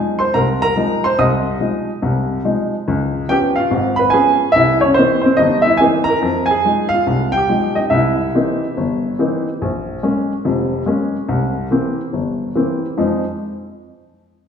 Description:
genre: solo jazz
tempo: 143 BPM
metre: 4/4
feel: swing 64% on 8ths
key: F minor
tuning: A4 = 440 Hz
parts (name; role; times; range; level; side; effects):
- warm upright piano; solo; 0.0-13.2 s; F1 to Eb6; -14 LUFS; equal; none
room: wet recital hall reverb, RT60 1.7 s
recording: recorded in a church or concert hall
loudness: -14 LUFS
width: side -7 dB against mid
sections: 0.0-9.6 A section; 9.6-13.0 B section; 13.0-14.5 C section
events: none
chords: 0.0 Fm7; 2.9 Db7; 4.6 C7#9; 6.2 Fm7; 7.9 C7#9; 9.6 Bbm7; 11.3 C7; 13.0 Fm7

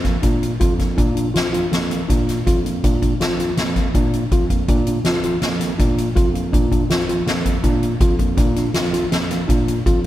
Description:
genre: progressive instrumental, band music in an uneven meter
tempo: 162 BPM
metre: 5/4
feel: straight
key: Bb major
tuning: A4 = 440 Hz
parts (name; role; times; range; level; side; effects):
- mellow tine electric piano; arpeggios; 0.0-10.1 s; Bb3 to F4; -23 LUFS; equal; medium stereo tremolo
- overdriven tine electric piano; bass; 0.0-10.1 s; F2 to Bb2; -22 LUFS; right 1 dB; none
- soft-mallet drum kit; drums; 0.0-10.1 s; hi-hat, kick drum, snare drum; -19 LUFS; equal; none
room: moderate cathedral reverb, RT60 5.4 s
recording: recorded in a church or concert hall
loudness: -16 LUFS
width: side -14 dB against mid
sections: 0.0-10.1 A section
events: none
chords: 0.0 Bb

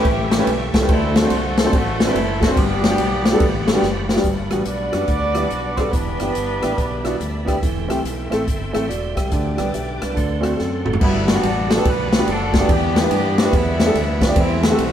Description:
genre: uptempo gospel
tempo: 143 BPM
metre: 4/4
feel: swing 64% on 8ths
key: G major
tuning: A4 = 439 Hz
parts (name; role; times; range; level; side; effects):
- warm horn section; melody; 0.0-7.5, 11.0-14.9 s; G3 to D5; -24 LUFS; equal; none
- warm upright piano; accompaniment; 0.0-14.9 s; G2 to E5; -21 LUFS; equal; none
- bright tonewheel organ; sustained chords; 0.0-14.9 s; G3 to D6; -32 LUFS; right 1 dB; fast rotary speaker, chorus vibrato
- modern bright fingered electric bass; bass; 0.0-14.9 s; E1 to G2; -25 LUFS; equal; none
- swinging big-band drum kit; drums; 0.0-14.9 s; crash cymbal, hi-hat, kick drum, ride cymbal, rim click, snare drum, toms; -20 LUFS; equal; none
- warm symphonic string section; sustained chords; 4.2-11.0 s; G3 to G4; -37 LUFS; left 1 dB; none
- breathy tenor saxophone; melody; 4.7-7.4 s; B3 to D4; -27 LUFS; right 2 dB; none
room: moderate stone room reverb, RT60 1.3 s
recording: band playing live in one room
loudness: -16 LUFS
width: side -10 dB against mid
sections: 0.0-4.2 A section; 4.2-11.0 B section; 11.0-14.9 A section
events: drum fill 3.8-4.2, 10.6-11.0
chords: 0.0 A7; 0.9 D7; 2.6 Gmaj7; 5.9 Em7; 7.6 Am7/E; 9.3 G; 10.2 D7; 11.0 Gmaj7; 12.7 Em7; 14.4 Am7

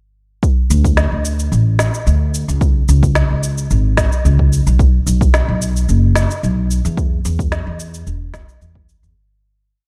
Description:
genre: organic downtempo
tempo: 110 BPM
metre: 4/4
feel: straight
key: B dorian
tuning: A4 = 441 Hz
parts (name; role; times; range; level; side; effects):
- electronic cabasa and snare drum; drums; 0.4-9.1 s; none; -24 LUFS; equal; none
- electronic kick drum; drums; 0.4-8.9 s; none; -18 LUFS; equal; none
- upright bass; bass; 0.7-9.1 s; E1 to E2; -17 LUFS; equal; sidechain pumping
room: little or no reverb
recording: dark, warm production, faint mains hum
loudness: -15 LUFS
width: mono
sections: 0.4-9.2 groove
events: fade-out 6.2-9.2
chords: none

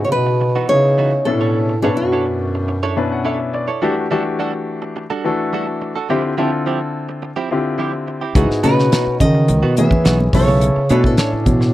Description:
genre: electric jazz fusion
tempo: 106 BPM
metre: 4/4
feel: straight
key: unclear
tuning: A4 = 440 Hz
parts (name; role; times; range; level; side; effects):
- nylon-string guitar; melody; 0.0-3.5, 8.4-11.7 s; F#4 to E5; -20 LUFS; equal; none
- mellow bass clarinet; second line; 0.0-3.5, 8.4-11.7 s; F#2 to E3; -19 LUFS; right 1 dB; tape echo
- clear baby grand piano; accompaniment; 0.0-11.7 s; B2 to A5; -20 LUFS; left 3 dB; none
- direct-recorded clean electric guitar; stabs; 0.3-11.6 s; E3 to C#5; -23 LUFS; right 6 dB; lush chorus
- fingered electric bass; bass; 8.3-11.7 s; B1 to C#3; -16 LUFS; equal; none
- damped 70s drum kit; drums; 8.4-11.7 s; hi-hat, kick drum, snare drum; -18 LUFS; equal; none
- congas; percussion; 8.6-11.6 s; none; -24 LUFS; right 3 dB; none
room: little or no reverb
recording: dry, close 1970s-style studio recording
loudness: -15 LUFS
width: side -15 dB against mid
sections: 0.0-11.7 A section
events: grand piano fill 2.7-3.8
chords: 0.0 C#m11; 1.3 Bm11; 3.8 Em11; 6.1 Dm11; 8.4 C#m11; 10.3 Bm11

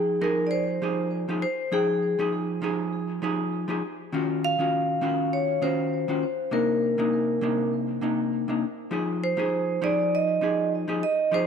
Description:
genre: chillout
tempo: 100 BPM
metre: 4/4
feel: swing 55% on 16ths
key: F dorian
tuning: A4 = 441 Hz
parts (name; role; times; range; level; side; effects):
- vibraphone with medium hard mallets; melody; 0.0-11.5 s; Ab4 to F5; -26 LUFS; right 1 dB; tape echo
- vintage hollow-body jazz guitar; accompaniment; 0.0-11.5 s; C3 to G5; -26 LUFS; moving between left 4 dB and right 5 dB; auto-pan
room: light reverb, small room ambience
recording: dark, warm production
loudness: -23 LUFS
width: side -7 dB against mid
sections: 0.0-11.5 A section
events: none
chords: 0.0 Fm9; 3.8 Ebm9; 6.5 Cm9; 8.9 Fm9

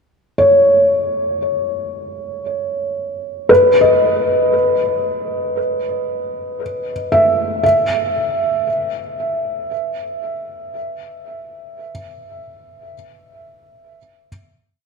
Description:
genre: ambient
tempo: 58 BPM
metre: 4/4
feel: straight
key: unclear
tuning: A4 = 443 Hz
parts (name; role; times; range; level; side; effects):
- felt-muted upright piano; solo; 0.4-14.3 s; B4 to E5; -15 LUFS; equal; ping-pong delay
room: wet cathedral reverb, RT60 5.5 s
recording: in a vast, echoing space, cassette tape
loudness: -15 LUFS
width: side -5 dB against mid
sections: 0.0-7.6 A section; 7.6-11.8 final note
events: none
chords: 0.0 N.C.; 3.5 E5; 7.6 N.C.

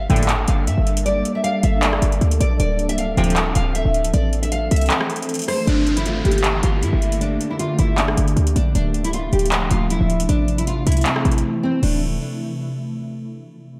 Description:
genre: hip hop, trap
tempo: 156 BPM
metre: 4/4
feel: half-time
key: D minor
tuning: A4 = 441 Hz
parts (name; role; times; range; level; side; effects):
- nylon-string guitar; melody; 0.0-12.0 s; C4 to G5; -26 LUFS; equal; lush chorus, delay
- glassy FM pad; sustained chords; 0.4-12.0 s; C3 to A4; -28 LUFS; equal; ensemble chorus, built-in reverb
- short 808-style bass; bass; 0.0-12.2 s; C1 to G2; -21 LUFS; equal; none
- resonant sweep polysynth; stabs; 0.1-0.3, 3.2-3.3 s; Bb1 to F3; -26 LUFS; equal; chorus, delay
- booming analog drum machine; drums; 0.1-11.9 s; crash cymbal, handclaps, hi-hat, rim click; -27 LUFS; equal; overdrive
- downlifter; sound effects; 5.7-8.8 s; none; -34 LUFS; equal; none
room: moderate plate reverb, RT60 1.6 s, digital ambience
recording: dreamy mix soaked in reverb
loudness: -19 LUFS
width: mono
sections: 0.0-5.7 A section; 5.7-11.8 B section; 11.8-13.4 C section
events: kick muted 4.9-5.7; break 11.4-11.8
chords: 0.0 Gmadd9; 2.6 Dm7; 4.1 Am; 5.7 Gmadd9; 8.8 Dm7; 10.3 Am; 11.8 Dm7

